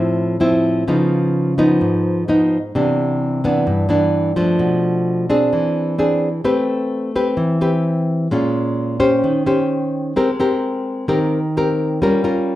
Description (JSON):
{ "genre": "bossa nova", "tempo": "129 BPM", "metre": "4/4", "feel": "straight", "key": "unclear", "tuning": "A4 = 440 Hz", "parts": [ { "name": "nylon-string guitar", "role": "solo", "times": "0.0-12.6 s", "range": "G2 to C5", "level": "-15 LUFS", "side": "equal", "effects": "none" } ], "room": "moderate large studio reverb, RT60 0.9 s", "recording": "band playing live in one room", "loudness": "-15 LUFS", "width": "side -14 dB against mid", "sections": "0.0-12.6 A section", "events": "none", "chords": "0.0 Dm9 (rootless); 0.9 Db9; 2.7 Cmaj9; 4.6 Bm7b5; 5.5 Eaug7; 6.4 Am9; 8.3 Bbm7; 9.2 Eb6; 10.2 Abmaj9; 12.0 Gm7b5", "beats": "0.40 | 0.87 1.33 1.80 2.26 | 2.73 3.19 3.66 4.12 | 4.58 5.05 5.51 5.98 | 6.44 6.91 7.37 7.83 | 8.30 8.76 9.23 9.69 | 10.16 10.62 11.09 11.55 | 12.02 12.48" }